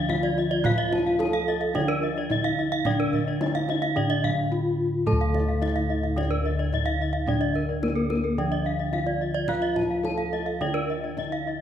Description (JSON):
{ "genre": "Balinese gamelan", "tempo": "109 BPM", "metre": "4/4", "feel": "straight", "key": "D pelog", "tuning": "A4 = 440 Hz", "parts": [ { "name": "gamelan-type bronze metallophone", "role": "melody", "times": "0.0-11.6 s", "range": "Bb3 to A4", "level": "-29 LUFS", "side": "equal", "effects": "none" }, { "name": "gamelan-type bronze metallophone", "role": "accompaniment", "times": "0.0-11.6 s", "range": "D3 to A3", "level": "-31 LUFS", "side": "equal", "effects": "none" }, { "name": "gamelan-type bronze metallophone", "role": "arpeggios", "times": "0.0-11.6 s", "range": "Bb4 to A5", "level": "-31 LUFS", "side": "left 4 dB", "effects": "none" }, { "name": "gamelan-type bossed gongs", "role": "bass", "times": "0.0-11.6 s", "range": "D2 to A4", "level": "-29 LUFS", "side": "left 1 dB", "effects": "none" }, { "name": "kendang", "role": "percussion", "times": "0.1-11.4 s", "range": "none", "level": "-32 LUFS", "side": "right 2 dB", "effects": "none" }, { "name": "gamelan-type bronze metallophone", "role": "arpeggios", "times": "0.2-11.5 s", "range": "A4 to F5", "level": "-31 LUFS", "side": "right 5 dB", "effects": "none" } ], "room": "moderate recital hall reverb, RT60 1.5 s", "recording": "none", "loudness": "-23 LUFS", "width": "side -9 dB against mid", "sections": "0.0-11.6 A section", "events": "none", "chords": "none", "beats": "0.10 | 0.65 1.20 1.75 2.31 | 2.86 3.41 3.96 4.51 | 5.07 5.62 6.17 6.72 | 7.28 7.83 8.38 8.93 | 9.49 10.04 10.61 11.18" }